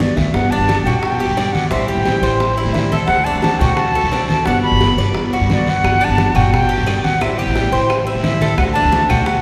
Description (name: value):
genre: latin, Cuban son and guajira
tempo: 174 BPM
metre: 4/4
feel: straight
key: G major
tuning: A4 = 440 Hz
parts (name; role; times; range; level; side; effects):
- silver concert flute; melody; 0.0-9.4 s; D5 to B5; -21 LUFS; equal; none
- picked acoustic archtop guitar; accompaniment; 0.0-9.3 s; D3 to F#4; -26 LUFS; equal; none
- upright bass; bass; 0.0-9.4 s; G1 to D3; -22 LUFS; equal; none
- bongos; percussion; 0.0-9.4 s; none; -28 LUFS; equal; none
- congas; percussion; 0.0-9.4 s; none; -25 LUFS; equal; none
- guiro; percussion; 0.0-9.4 s; none; -33 LUFS; equal; none
- Cuban tres; arpeggios; 0.5-9.4 s; C4 to D5; -24 LUFS; equal; none
- claves; percussion; 5.8-9.3 s; none; -35 LUFS; equal; none
room: wet church reverb, RT60 3.3 s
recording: recorded in a church or concert hall, vinyl crackle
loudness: -16 LUFS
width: mono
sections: 0.3-9.4 A section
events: drum fill 0.0-0.3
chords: 0.3 Gmaj7; 1.7 Am7; 3.1 D7; 4.5 Gmaj7; 7.2 Am7; 8.6 D7